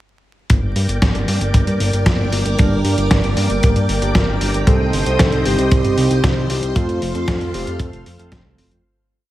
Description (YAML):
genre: italo disco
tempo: 115 BPM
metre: 4/4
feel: straight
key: G minor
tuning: A4 = 440 Hz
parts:
  - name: string machine, full ensemble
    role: sustained chords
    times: 0.5-8.8 s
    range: A4 to Eb6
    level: -24 LUFS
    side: equal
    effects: ensemble chorus
  - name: fat analog bass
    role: bass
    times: 0.5-8.8 s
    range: F1 to G2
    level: -20 LUFS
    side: equal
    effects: none
  - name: dusty soul sampler-style drum kit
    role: drums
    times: 0.5-8.8 s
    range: hi-hat, snare drum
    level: -22 LUFS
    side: equal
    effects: studio reverb, gated reverb
  - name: kick drum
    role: drums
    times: 0.5-8.4 s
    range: none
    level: -16 LUFS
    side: equal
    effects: studio reverb
  - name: chorused polysynth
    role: stabs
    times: 2.6-8.8 s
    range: G2 to C5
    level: -22 LUFS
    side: right 2 dB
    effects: none
  - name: soft octave-layered synth lead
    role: melody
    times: 4.7-8.3 s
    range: F4 to A4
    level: -22 LUFS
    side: equal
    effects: chorus
room: small room ambience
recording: vinyl crackle, faint mains hum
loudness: -14 LUFS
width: side -15 dB against mid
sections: 0.5-8.8 verse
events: fade-out 6.1-8.8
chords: 0.5 Gm; 4.7 Cm; 6.8 F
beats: | 0.50 1.02 1.54 2.06 | 2.58 3.11 3.63 4.15 | 4.67 5.19 5.71 6.24 | 6.76 7.28 7.80 8.32